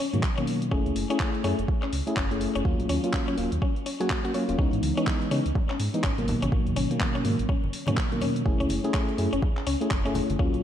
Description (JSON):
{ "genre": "deep house", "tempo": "124 BPM", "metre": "4/4", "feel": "swing 60% on 16ths", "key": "unclear", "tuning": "A4 = 440 Hz", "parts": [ { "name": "mallet-like synth pluck", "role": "arpeggios", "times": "0.0-10.5 s", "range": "C#4 to C#5", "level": "-32 LUFS", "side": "left 3 dB", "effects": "chorus, sidechain pumping, ping-pong delay" }, { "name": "mellow FM electric piano", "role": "stabs", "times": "0.1-10.6 s", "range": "B2 to G#4", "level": "-28 LUFS", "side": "equal", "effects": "chorus, cassette tape, sidechain pumping, ping-pong delay" }, { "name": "sub bass with octave", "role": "bass", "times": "0.1-10.6 s", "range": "D#1 to C#3", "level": "-30 LUFS", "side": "equal", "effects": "sidechain pumping" }, { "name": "deep house drum kit", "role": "drums", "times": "0.1-10.6 s", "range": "handclaps, hi-hat", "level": "-35 LUFS", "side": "equal", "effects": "overdrive" }, { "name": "electronic kick drum", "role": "drums", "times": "0.2-10.5 s", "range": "none", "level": "-27 LUFS", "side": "equal", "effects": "overdrive" }, { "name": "congas", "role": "percussion", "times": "4.8-10.4 s", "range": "none", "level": "-37 LUFS", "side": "left 2 dB", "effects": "none" } ], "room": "moderate lush hall reverb, RT60 1.7 s", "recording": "dreamy mix soaked in reverb", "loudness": "-24 LUFS", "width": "side -10 dB against mid", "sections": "0.0-10.6 A section", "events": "none", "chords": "0.0 G#m9; 0.7 F#m9; 2.6 D#m9; 4.6 C#m9; 6.3 G#m9; 8.5 F#m9", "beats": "0.23 | 0.71 1.20 1.68 2.17 | 2.65 3.13 3.62 4.10 | 4.59 5.07 5.55 6.04 | 6.52 7.00 7.49 7.97 | 8.46 8.94 9.43 9.91 | 10.39" }